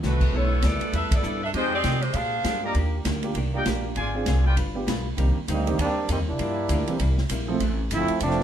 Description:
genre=jazz, big band swing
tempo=198 BPM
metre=4/4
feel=swing 60% on 8ths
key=unclear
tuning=A4 = 440 Hz
part: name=vintage hollow-body jazz guitar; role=accompaniment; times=0.0-8.4 s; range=F2 to B4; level=-34 LUFS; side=left 4 dB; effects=none
part: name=upright bass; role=bass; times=0.0-8.4 s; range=F1 to C3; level=-25 LUFS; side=equal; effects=none
part: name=swinging big-band drum kit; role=drums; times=0.0-8.4 s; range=crash cymbal, hi-hat, kick drum, ride cymbal, snare drum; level=-30 LUFS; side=equal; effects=none
part: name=bright saxophone section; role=melody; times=0.1-2.6 s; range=Ab3 to F5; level=-26 LUFS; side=equal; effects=none
part: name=warm grand piano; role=accompaniment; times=0.3-7.6 s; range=Eb3 to A4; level=-30 LUFS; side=right 4 dB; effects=none
part: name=clear trumpet section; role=stabs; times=1.5-4.5 s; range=Eb4 to Bb5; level=-30 LUFS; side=left 1 dB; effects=none
part: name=clear trombone section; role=second line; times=5.5-8.4 s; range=Eb3 to E4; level=-25 LUFS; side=right 2 dB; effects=none
room=moderate club reverb, RT60 0.5 s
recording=minimal, uncompressed stereo recording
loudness=-22 LUFS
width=side -10 dB against mid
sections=0.0-5.2 A section; 5.2-8.4 B section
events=band accent 1.1; trombone section solo 5.2-8.4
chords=0.3 G69; 1.5 Fm9; 2.1 Bb13; 2.8 Ebmaj7; 4.0 Dm7b5; 4.6 G7; 5.2 Cm7; 6.4 Gm7; 7.0 C7; 7.6 Fmaj7

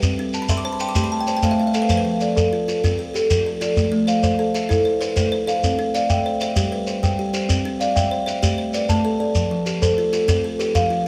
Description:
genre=southern african traditional, mbira-style interlocking cycle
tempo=129 BPM (dotted quarters)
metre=12/8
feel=straight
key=C major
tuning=A4 = 440 Hz
part: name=buzzing kalimba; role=arpeggios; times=0.0-11.1 s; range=F3 to D6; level=-26 LUFS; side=equal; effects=none
part: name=kalimba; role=arpeggios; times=0.0-11.1 s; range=F3 to A5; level=-24 LUFS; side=equal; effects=none
part: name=shekere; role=percussion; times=0.0-10.9 s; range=none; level=-25 LUFS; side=equal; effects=none
room=light reverb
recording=none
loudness=-20 LUFS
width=mono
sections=0.0-5.6 A section; 5.6-11.1 B section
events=kalimba fill 0.3-1.9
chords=0.0 C; 1.0 Am; 1.9 F; 3.8 Am; 5.6 C; 6.6 G; 7.5 C; 8.4 Am; 9.4 F

